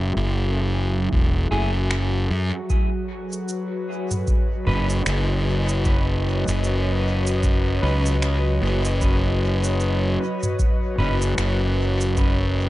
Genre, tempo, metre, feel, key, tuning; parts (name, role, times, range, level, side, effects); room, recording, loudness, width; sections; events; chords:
ambient dub; 76 BPM; 4/4; swing 59% on 16ths; A4 = 441 Hz
airy breathy pad; sustained chords; 0.0-12.7 s; F#3 to E5; -27 LUFS; equal; chorus
fuzz fingered electric bass; bass; 0.0-12.7 s; E1 to F#2; -21 LUFS; equal; overdrive
electronic kick drum; drums; 1.1-12.4 s; -22 LUFS; equal
clean electric guitar; stabs; 1.5-11.2 s; A3 to B4; -33 LUFS; right 1 dB; dub echo
organic electronic drum kit; drums; 1.9-12.4 s; finger snaps, shaker, toms; -31 LUFS; right 1 dB; dub echo
digital ambience; nothing above 10.6 kHz; -19 LUFS; side -16 dB against mid
0.0-12.7 A section
0.0 F#m9; 2.7 Badd9/F#